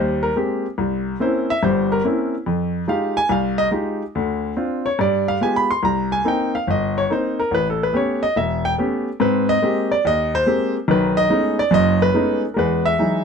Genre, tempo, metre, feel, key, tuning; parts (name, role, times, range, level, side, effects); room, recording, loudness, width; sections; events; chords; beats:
solo jazz; 142 BPM; 4/4; swing 67% on 8ths; A4 = 440 Hz
clear baby grand piano; solo; 0.0-13.2 s; E1 to C6; -17 LUFS; equal
light reverb; close, detailed microphones; -17 LUFS; side -6 dB against mid
0.0-12.6 A section
grand piano solo 0.0-13.2
0.0 Abmaj9; 0.8 C7b9; 2.5 Fm9; 4.1 Dm7; 5.0 G7b9; 5.8 Cm7; 7.5 A9; 9.2 Abmaj9; 10.9 B13; 12.6 Emaj9
0.35 | 0.77 1.19 1.61 2.04 | 2.46 2.88 3.30 3.72 | 4.14 4.57 4.99 5.41 | 5.83 6.25 6.67 7.09 | 7.51 7.93 8.36 8.78 | 9.20 9.62 10.04 10.46 | 10.88 11.30 11.72 12.14 | 12.56 12.98